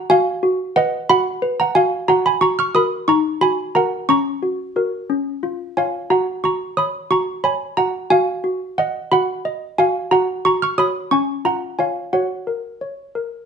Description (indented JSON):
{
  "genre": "classical, lullaby for handbells",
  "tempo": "60 BPM (dotted quarters)",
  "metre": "6/8",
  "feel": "straight",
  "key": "F# major",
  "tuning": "A4 = 440 Hz",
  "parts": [
    { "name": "malleted handbells", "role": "solo", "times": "0.0-13.5 s", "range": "C#4 to E#6", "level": "-17 LUFS", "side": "equal", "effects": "none" }
  ],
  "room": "moderate studio reverb, RT60 0.8 s",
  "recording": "band playing live in one room, nothing above 10.6 kHz",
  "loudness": "-17 LUFS",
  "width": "side -6 dB against mid",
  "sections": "0.0-13.5 A section",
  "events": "none",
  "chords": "0.1 B/F#; 2.1 F#; 3.1 D#m; 4.1 F#/C#; 5.1 C#; 6.1 F#; 8.1 B/F#; 10.1 F#; 11.1 C#; 12.1 F#",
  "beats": "| 0.10 1.09 | 2.08 3.08 | 4.08 5.10 | 6.11 7.11 | 8.10 9.12 | 10.11 11.11 | 12.12 13.15"
}